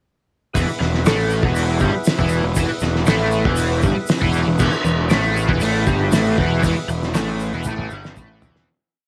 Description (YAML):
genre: psychedelic rock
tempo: 118 BPM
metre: 4/4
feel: straight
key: E major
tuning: A4 = 440 Hz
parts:
  - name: percussive tonewheel organ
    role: sustained chords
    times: 0.5-8.6 s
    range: B3 to E5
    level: -32 LUFS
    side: equal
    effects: slow rotary speaker, overdrive
  - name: cloth-damped thuddy drum kit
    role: drums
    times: 0.5-8.7 s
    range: crash cymbal, hi-hat, kick drum, snare drum, toms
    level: -24 LUFS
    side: equal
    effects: none
  - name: overdriven electric guitar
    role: riff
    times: 0.6-8.7 s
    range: E2 to A3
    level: -23 LUFS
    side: equal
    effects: rotary speaker
  - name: fuzz picked electric bass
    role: bass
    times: 0.6-8.7 s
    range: E1 to A1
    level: -24 LUFS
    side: equal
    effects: overdrive
  - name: tube shaker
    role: percussion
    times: 0.6-8.5 s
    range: none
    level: -39 LUFS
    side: equal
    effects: none
room: little or no reverb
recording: none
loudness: -19 LUFS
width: mono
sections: 0.6-8.7 riff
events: fade-out 6.6-8.7; drum fill 7.7-8.7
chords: 0.6 E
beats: | 0.55 1.06 1.56 2.06 | 2.57 3.07 3.58 4.09 | 4.59 5.10 5.61 6.12 | 6.63 7.14 7.66 8.17